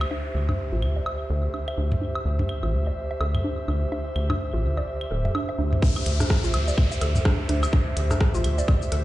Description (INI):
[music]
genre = minimal techno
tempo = 126 BPM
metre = 4/4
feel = swing 59% on 16ths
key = unclear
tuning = A4 = 440 Hz
[part]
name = rubbery square bass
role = bass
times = 0.0-9.0 s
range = D1 to D2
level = -23 LUFS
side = equal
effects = sidechain pumping
[part]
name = electronic claves, woodblock and toms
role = percussion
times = 0.0-8.8 s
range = none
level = -30 LUFS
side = equal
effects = tape echo
[part]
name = downlifter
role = sound effects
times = 0.0-2.0, 5.8-9.0 s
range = none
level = -36 LUFS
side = left 1 dB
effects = none
[part]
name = airy breathy pad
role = texture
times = 0.0-9.0 s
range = G4 to E5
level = -32 LUFS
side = right 1 dB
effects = chorus, sidechain pumping
[part]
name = hollow square pluck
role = riff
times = 0.1-9.0 s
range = D4 to D5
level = -33 LUFS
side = right 1 dB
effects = chorus, sidechain pumping, digital delay
[part]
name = electronic kick drum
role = drums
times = 5.8-8.8 s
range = none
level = -19 LUFS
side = equal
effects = none
[part]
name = minimal click drum kit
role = drums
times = 6.1-9.0 s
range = hi-hat, rim click, shaker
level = -32 LUFS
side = equal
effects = overdrive
[sound]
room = little or no reverb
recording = played on a big sound system in a bare room, stone room reverb, nothing above 10.6 kHz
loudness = -22 LUFS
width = side -16 dB against mid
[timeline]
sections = 0.0-5.8 A section; 5.8-9.0 B section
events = filter sweep on synth arpeggio sound 0.0-5.8; drop 5.8-9.0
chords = 0.0 D7(no3)